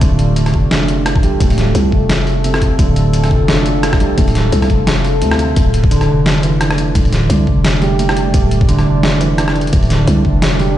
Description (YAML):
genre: half-time drum and bass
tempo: 173 BPM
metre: 4/4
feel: swing 57% on 16ths, half-time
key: D minor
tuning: A4 = 440 Hz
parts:
  - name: deep dark ambient pad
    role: sustained chords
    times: 0.0-10.8 s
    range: A3 to D5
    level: -20 LUFS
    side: left 1 dB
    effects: chorus, built-in reverb, vintage 12-bit sampler grit, sidechain pumping
  - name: felt-muted upright piano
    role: arpeggios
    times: 0.0-10.8 s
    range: C3 to D4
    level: -17 LUFS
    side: right 2 dB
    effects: dub echo
  - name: growling 808-style bass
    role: bass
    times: 0.0-10.8 s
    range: D1 to D2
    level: -15 LUFS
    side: equal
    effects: none
  - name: boom bap sampler-style drum kit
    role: drums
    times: 0.0-10.7 s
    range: hi-hat, rim click, snare drum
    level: -19 LUFS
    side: equal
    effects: none
  - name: electronic kick drum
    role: drums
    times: 0.0-10.3 s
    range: none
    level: -14 LUFS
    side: equal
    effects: overdrive
room: light reverb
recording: played on a big sound system in a bare room, large studio reverb, nothing above 11.0 kHz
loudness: -11 LUFS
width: side -12 dB against mid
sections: 0.0-5.6 A section; 5.6-10.8 A section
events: drop 0.0-5.6, 5.6-10.8; kick drops out 4.9-5.6; band accent 5.3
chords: 0.0 Dm